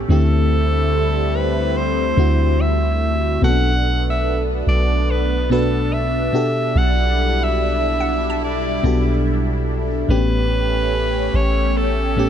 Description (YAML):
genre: R&B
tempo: 72 BPM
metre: 4/4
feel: swing 58% on 16ths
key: E minor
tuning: A4 = 440 Hz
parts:
  - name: FM electric piano with soft pad layer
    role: accompaniment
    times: 0.0-12.3 s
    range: A2 to B4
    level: -22 LUFS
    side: left 2 dB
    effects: chorus
  - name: lush unison pad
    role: sustained chords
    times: 0.0-12.3 s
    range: D3 to G4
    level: -24 LUFS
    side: right 1 dB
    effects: chorus, phaser
  - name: soft 808-style bass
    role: bass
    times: 0.0-12.3 s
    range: A1 to D2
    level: -19 LUFS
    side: equal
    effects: none
  - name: edgy alto saxophone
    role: melody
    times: 0.1-12.3 s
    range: A4 to F#5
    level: -23 LUFS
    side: equal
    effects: ping-pong delay
  - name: glassy wavetable pluck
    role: texture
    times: 8.0-9.3 s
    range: F#5 to A5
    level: -31 LUFS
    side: right 4 dB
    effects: chorus, ping-pong delay
room: digital ambience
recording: nothing above 10.5 kHz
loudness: -16 LUFS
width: side -9 dB against mid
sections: 0.0-12.3 A section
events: none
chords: 0.1 D9sus4; 3.4 Bm7; 6.3 Em11/B; 10.1 A9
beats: | 0.09 0.92 1.75 2.59 | 3.42 4.25 5.09 5.92 | 6.75 7.59 8.42 9.26 | 10.09 10.92 11.76